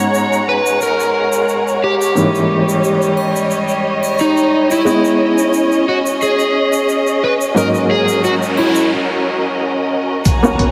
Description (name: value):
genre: trip hop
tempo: 89 BPM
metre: 4/4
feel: swing 54% on 16ths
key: G# minor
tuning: A4 = 439 Hz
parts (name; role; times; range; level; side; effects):
- overdriven slide guitar; melody; 0.0-8.9 s; D#4 to C#5; -19 LUFS; equal; tape echo
- felt-muted upright piano; accompaniment; 0.0-10.7 s; G#2 to D#5; -21 LUFS; equal; tremolo, tape echo
- dark symphonic violin section; sustained chords; 0.0-10.7 s; G3 to A#5; -19 LUFS; equal; none
- egg shaker and triangle; percussion; 0.1-10.6 s; none; -32 LUFS; equal; none
- noise sweep and impact; sound effects; 8.3-10.7 s; none; -26 LUFS; equal; none
- trip hop sampler-style drum kit; drums; 10.3-10.7 s; hi-hat, kick drum; -17 LUFS; equal; none
- bowed-like drone; texture; 10.3-10.7 s; none; barely audible; none; none
room: wet church reverb, RT60 3.9 s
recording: dreamy mix soaked in reverb, vinyl crackle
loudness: -15 LUFS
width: mono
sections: 0.0-10.3 A section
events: noise sweep 8.3-10.3; break 8.9-10.3; impact 10.3-10.7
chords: 0.0 G#m11; 2.2 D#7b9/G#; 4.9 C#m9/G#; 7.6 G#9sus4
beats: 0.14 0.82 1.49 | 2.17 2.84 3.51 4.19 | 4.86 5.54 6.21 6.88 | 7.56 8.23 8.91 9.58 | 10.26